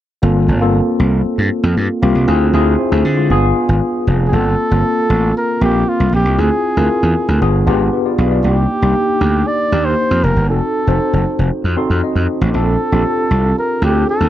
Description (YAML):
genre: polished 1980s jazz-funk pop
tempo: 117 BPM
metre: 4/4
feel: straight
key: G minor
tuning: A4 = 440 Hz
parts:
  - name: tine electric piano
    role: accompaniment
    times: 0.2-14.3 s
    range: Ab3 to C6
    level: -17 LUFS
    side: left 2 dB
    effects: medium stereo tremolo, wide subtle chorus
  - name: gritty slap bass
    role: bass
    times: 0.2-14.3 s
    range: F1 to D3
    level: -14 LUFS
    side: equal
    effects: overdrive
  - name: warm flugelhorn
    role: melody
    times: 4.3-14.3 s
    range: F4 to D5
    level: -18 LUFS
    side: right 1 dB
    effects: slapback echo
room: little or no reverb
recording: dry, close 1970s-style studio recording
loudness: -12 LUFS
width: side -12 dB against mid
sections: 0.2-4.3 A section; 4.3-14.3 B section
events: tine electric piano fill 11.5-12.5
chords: 0.2 Gm11; 2.3 Dm7b5; 3.3 G7b9; 4.3 Gm11; 6.4 Dm7b5; 7.4 G7b9; 8.4 Cm7; 10.5 F7b9; 12.5 Bbmaj9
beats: | 0.22 0.73 1.25 1.76 | 2.27 2.79 3.30 3.81 | 4.33 4.84 5.36 5.87 | 6.38 6.90 7.41 7.92 | 8.44 8.95 9.46 9.98 | 10.49 11.00 11.52 12.03 | 12.54 13.05 13.56 14.08